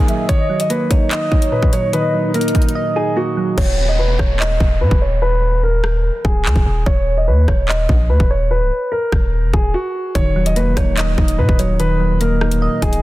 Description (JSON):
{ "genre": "hip hop, drill", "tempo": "146 BPM", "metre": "4/4", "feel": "half-time", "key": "Eb phrygian", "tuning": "A4 = 441 Hz", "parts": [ { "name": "dark grand piano", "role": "melody", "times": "0.0-13.0 s", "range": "Gb4 to Eb5", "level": "-21 LUFS", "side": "equal", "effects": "low-pass filter, tape echo" }, { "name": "soft electric-piano-like synth keys", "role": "accompaniment", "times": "0.0-3.6, 10.2-13.0 s", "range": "Bb2 to Eb5", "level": "-19 LUFS", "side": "right 2 dB", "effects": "chorus, low-pass filter" }, { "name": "downlifter and swell", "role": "sound effects", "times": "1.7-6.9 s", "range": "none", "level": "-28 LUFS", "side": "equal", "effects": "none" }, { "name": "warm velvety synth lead", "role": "second line", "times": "0.1-2.3 s", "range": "Db5 to Fb5", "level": "-24 LUFS", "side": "left 1 dB", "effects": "chorus, tape echo" }, { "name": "drill drum kit", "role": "drums", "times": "0.1-13.0 s", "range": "crash cymbal, handclaps, hi-hat, kick drum, rim click", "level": "-17 LUFS", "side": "equal", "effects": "none" }, { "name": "long sustained 808-style bass", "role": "bass", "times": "3.6-13.0 s", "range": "Db1 to Bb2", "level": "-17 LUFS", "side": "equal", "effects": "none" } ], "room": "digital ambience", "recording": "dense, heavily limited modern master", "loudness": "-14 LUFS", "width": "side -17 dB against mid", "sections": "0.0-3.6 A section; 3.6-13.0 B section", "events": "swell 1.7-3.6; break 2.8-3.6, 9.7-10.2; hi-hats muted 3.6-10.2; filter sweep 3.6-10.2", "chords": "0.0 Ebm; 3.6 Eb5; 10.2 Ebm", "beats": "| 0.29 0.70 1.11 1.52 | 1.93 2.34 2.75 3.17 | 3.58 3.99 4.40 4.81 | 5.22 5.63 6.04 6.45 | 6.87 7.28 7.69 8.10 | 8.51 8.92 9.33 9.74 | 10.15 10.56 10.97 11.38 | 11.80 12.21 12.62" }